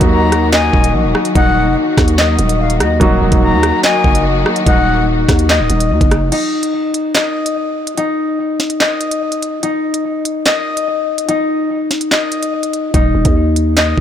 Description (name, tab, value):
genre	hip hop, drill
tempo	145 BPM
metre	4/4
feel	half-time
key	Eb minor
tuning	A4 = 440 Hz
part	dark baby grand piano	accompaniment	0.0-6.3 s	Gb3 to Gb4	-21 LUFS	right 3 dB	low-pass filter
part	dark symphonic string section	sustained chords	0.0-6.3 s	Eb3 to Gb4	-21 LUFS	left 2 dB	none
part	concert harp	arpeggios	0.0-14.0 s	Eb4 to Eb5	-16 LUFS	left 3 dB	low-pass filter, digital delay
part	growling 808-style bass	bass	0.0-6.3, 12.9-14.0 s	Db1 to Eb2	-15 LUFS	right 1 dB	none
part	drill drum kit	drums	0.0-14.0 s	crash cymbal, handclaps, hi-hat, kick drum, rim click, snare drum	-15 LUFS	right 1 dB	none
part	silver concert flute	second line	0.1-5.1 s	Eb5 to Bb5	-20 LUFS	left 4 dB	digital delay
room	small room ambience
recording	blown-out, overdriven recording, overdrive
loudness	-12 LUFS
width	side -9 dB against mid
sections	0.0-6.3 A section; 6.3-14.0 B section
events	break 6.3-12.9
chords	0.0 Ebm; 6.3 N.C.